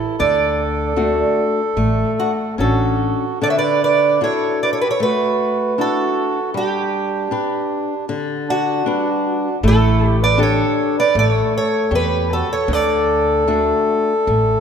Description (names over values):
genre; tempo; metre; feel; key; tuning
fado-style ballad; 77 BPM; 4/4; rubato; D major; A4 = 440 Hz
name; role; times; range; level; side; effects
fingerpicked twelve-string acoustic guitar; melody; 0.0-14.6 s; F#4 to E5; -20 LUFS; right 3 dB; none
mellow accordion; second line; 0.0-14.6 s; D4 to C#5; -20 LUFS; right 1 dB; none
flamenco guitar; accompaniment; 0.0-14.6 s; D3 to C#5; -22 LUFS; left 3 dB; none
upright bass; bass; 0.2-3.1, 9.6-14.5 s; A1 to E2; -20 LUFS; equal; none
room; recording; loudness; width
moderate concert hall reverb, RT60 2.3 s; none; -15 LUFS; side -7 dB against mid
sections
0.0-3.4 A section; 3.4-14.6 A section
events
none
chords
0.2 Dmaj7; 3.4 Dadd9; 6.5 G; 9.6 A7sus4; 11.1 A7; 12.7 D